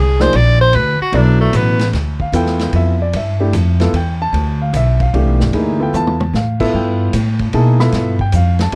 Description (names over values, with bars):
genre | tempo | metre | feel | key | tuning
modal jazz | 150 BPM | 3/4 | swing 66% on 8ths | G mixolydian | A4 = 440 Hz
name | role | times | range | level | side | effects
bright tenor saxophone | melody | 0.0-1.9 s | A3 to D5 | -18 LUFS | equal | none
upright bass | bass | 0.0-8.8 s | G1 to B2 | -17 LUFS | equal | none
warm concert grand piano | accompaniment | 0.2-8.8 s | E3 to B5 | -21 LUFS | equal | none
vintage drum kit | drums | 0.2-8.8 s | crash cymbal, hi-hat, kick drum, ride cymbal, snare drum, toms | -27 LUFS | equal | none
room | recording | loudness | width
little or no reverb | dry, close 1970s-style studio recording | -15 LUFS | mono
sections
0.0-1.9 A section; 1.9-8.8 A section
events
tenor saxophone solo 0.0-1.9; drum fill 5.9-6.3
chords
0.0 Bb9; 0.7 D69; 1.9 G13